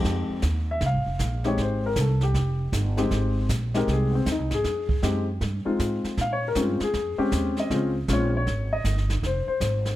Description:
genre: jazz piano trio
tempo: 157 BPM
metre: 4/4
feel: swing 65% on 8ths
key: F minor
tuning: A4 = 443 Hz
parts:
  - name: dark grand piano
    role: melody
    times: 0.0-10.0 s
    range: F2 to F5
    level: -26 LUFS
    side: left 2 dB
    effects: none
  - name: upright bass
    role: bass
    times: 0.0-10.0 s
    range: F1 to Bb2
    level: -26 LUFS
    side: right 1 dB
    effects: none
  - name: jazz brush drum kit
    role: drums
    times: 0.0-10.0 s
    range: brushed snare drum, hi-hat, kick drum, snare drum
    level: -31 LUFS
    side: right 2 dB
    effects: none
room: light reverb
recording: none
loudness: -22 LUFS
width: side -15 dB against mid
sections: 0.0-10.0 A section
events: grand piano solo 0.0-10.0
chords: 0.0 Fm7; 6.2 Bbm7; 9.2 Fm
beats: | 0.04 0.43 0.81 1.19 | 1.58 1.96 2.35 2.73 | 3.11 3.49 3.88 4.26 | 4.64 5.03 5.41 5.79 | 6.17 6.55 6.94 7.32 | 7.70 8.08 8.46 8.84 | 9.23 9.61

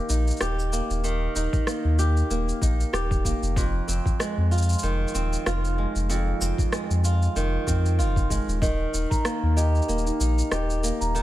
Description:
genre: folktronica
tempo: 95 BPM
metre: 4/4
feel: swing 56% on 16ths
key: Eb major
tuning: A4 = 440 Hz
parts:
  - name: flamenco guitar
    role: arpeggios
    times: 0.0-11.2 s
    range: F2 to G4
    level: -28 LUFS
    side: right 1 dB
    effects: digital delay
  - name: warm sub bass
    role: bass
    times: 0.1-11.2 s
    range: Eb1 to F2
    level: -24 LUFS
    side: equal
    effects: tube saturation
  - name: electronic shaker and rim click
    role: drums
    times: 0.1-11.2 s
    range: none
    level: -32 LUFS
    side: equal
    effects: overdrive
  - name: electronic kick drum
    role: drums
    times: 1.5-9.2 s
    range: none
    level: -25 LUFS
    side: equal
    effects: none
  - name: large celesta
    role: second line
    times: 8.6-11.2 s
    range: Eb4 to Bb5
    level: -29 LUFS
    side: equal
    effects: digital delay
room: small room ambience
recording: none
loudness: -22 LUFS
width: side -15 dB against mid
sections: 0.0-11.2 A section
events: none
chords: 0.0 Eb; 3.6 Fm7; 8.6 Eb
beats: 0.41 | 1.04 1.67 2.31 2.94 | 3.57 4.20 4.83 5.46 | 6.09 6.73 7.36 7.99 | 8.62 9.25 9.88 10.52 | 11.15

